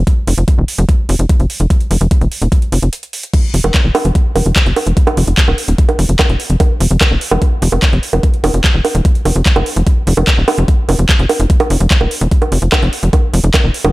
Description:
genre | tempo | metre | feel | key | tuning
psychedelic trance | 147 BPM | 4/4 | straight | unclear | A4 = 440 Hz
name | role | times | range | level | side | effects
tight sequencer bass | bass | 0.0-13.9 s | Eb1 to F1 | -12 LUFS | equal | none
electronic kick drum | drums | 0.1-13.6 s | none | -11 LUFS | equal | overdrive, small room reverb
garage drum kit | drums | 0.1-13.9 s | bongos, crash cymbal, handclaps, hi-hat | -16 LUFS | right 2 dB | overdrive, small room reverb
room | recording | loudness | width
little or no reverb | dark, warm production | -10 LUFS | side -19 dB against mid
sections
0.0-13.9 A section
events
break 2.9-3.3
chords
none

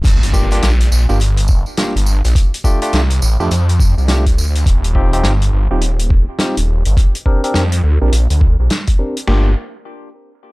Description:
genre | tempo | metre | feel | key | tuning
glitch hop | 104 BPM | 4/4 | swing 62% on 16ths | G minor | A4 = 441 Hz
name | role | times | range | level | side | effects
phased detuned saw bass | bass | 0.0-9.5 s | Eb1 to F2 | -13 LUFS | equal | phaser, tube saturation
boom bap sampler-style drum kit | drums | 0.0-9.4 s | kick drum, snare drum | -13 LUFS | equal | none
vintage drum kit | drums | 0.0-9.3 s | crash cymbal, hi-hat, rim click, snare drum | -21 LUFS | equal | none
tambourine | percussion | 0.0-4.6 s | none | -28 LUFS | right 2 dB | none
impact | sound effects | 0.0-2.4 s | none | -24 LUFS | equal | none
barky tine electric piano | stabs | 0.3-9.5 s | A3 to Bb4 | -22 LUFS | moving between left 3 dB and right 4 dB | auto-pan, sidechain pumping, low-pass filter, tape echo
room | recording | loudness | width
little or no reverb | dry, gritty hardware recording, tape stop | -12 LUFS | side -22 dB against mid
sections
0.0-9.3 A section; 9.3-10.5 B section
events
impact 0.0-2.4; filter sweep on detuned saw bass 0.0-9.3; filter sweep on tine electric piano 0.0-9.3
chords
0.0 Gm7; 2.4 F69; 4.7 Eb69; 7.0 Bb69; 9.3 Gm7

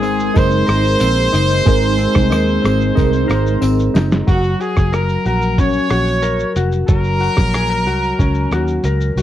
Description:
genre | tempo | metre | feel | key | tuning
indie pop, bedroom pop | 92 BPM | 4/4 | straight | Gb lydian | A4 = 441 Hz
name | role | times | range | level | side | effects
brilliant trumpet | melody | 0.0-8.8 s | Gb4 to Db5 | -19 LUFS | right 1 dB | analog chorus, slapback echo
semi-hollow electric guitar | accompaniment | 0.0-9.2 s | Gb3 to Bb4 | -20 LUFS | left 4 dB | lush chorus, vibrato effect
soft electric-piano-like synth keys | accompaniment | 0.0-4.3 s | Ab3 to Bb4 | -20 LUFS | right 7 dB | chorus, phaser
vintage muted fingered electric bass | bass | 0.0-9.2 s | F1 to Eb2 | -18 LUFS | equal | none
lo-fi sampler-style drum kit | drums | 0.0-9.2 s | hi-hat, kick drum, rim click, shaker, snare drum | -17 LUFS | equal | none
tambourine | percussion | 0.0-4.1 s | none | -42 LUFS | right 7 dB | none
room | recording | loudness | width
little or no reverb | dry, close 1970s-style studio recording | -13 LUFS | side -12 dB against mid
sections
0.0-4.3 A section; 4.3-9.2 B section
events
drum fill 3.6-4.3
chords
0.0 Abadd9; 4.3 Gb

